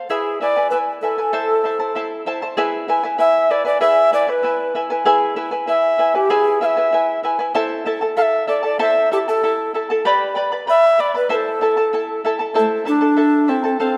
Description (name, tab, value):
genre	andean folk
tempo	96 BPM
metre	2/4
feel	straight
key	unclear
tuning	A4 = 440 Hz
part	charango	accompaniment	0.0-14.0 s	E4 to B5	-22 LUFS	equal	none
part	mellow bass recorder	melody	0.1-14.0 s	A3 to F5	-19 LUFS	equal	none
room	wet scoring stage reverb, RT60 1.7 s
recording	none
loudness	-18 LUFS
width	mono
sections	0.0-2.6 A section; 2.6-12.6 B section; 12.6-14.0 A section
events	none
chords	0.1 E; 1.3 Am; 2.6 E; 7.6 Am; 10.0 G; 11.3 Am